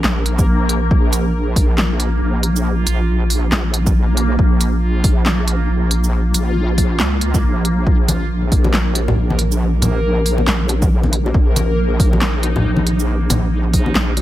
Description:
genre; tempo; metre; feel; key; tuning
deep dubstep; 138 BPM; 4/4; swing 59% on 16ths, half-time; unclear; A4 = 440 Hz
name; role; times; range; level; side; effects
wobble bass; bass; 0.0-14.2 s; Bb1 to Db2; -17 LUFS; equal; chorus
deep house drum kit; drums; 0.0-14.2 s; handclaps, hi-hat, shaker, snare drum; -20 LUFS; equal; none
backwards swelling texture; texture; 0.0-14.2 s; Bb3 to Bb4; -24 LUFS; equal; built-in reverb
electronic kick drum; drums; 0.4-13.8 s; none; -15 LUFS; equal; none
congas and bongos; percussion; 8.1-14.2 s; none; -22 LUFS; left 1 dB; dub echo
room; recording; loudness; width
digital ambience; echo-heavy mix; -14 LUFS; side -14 dB against mid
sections
0.0-14.2 A section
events
none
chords
0.0 Bb5

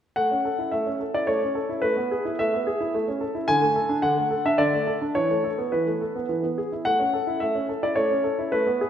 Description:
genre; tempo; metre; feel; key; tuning
classical-period piano sonatina; 108 BPM; 3/4; straight; A major; A4 = 440 Hz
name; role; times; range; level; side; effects
clear baby grand piano; solo; 0.2-8.9 s; D3 to G#5; -22 LUFS; equal; none
room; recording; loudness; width
wet scoring stage reverb, RT60 1.8 s; none; -22 LUFS; side -9 dB against mid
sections
0.2-8.9 A section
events
none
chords
0.2 A; 1.8 E/A; 2.9 A; 3.5 D5; 5.2 Esus4; 6.3 E; 6.9 A

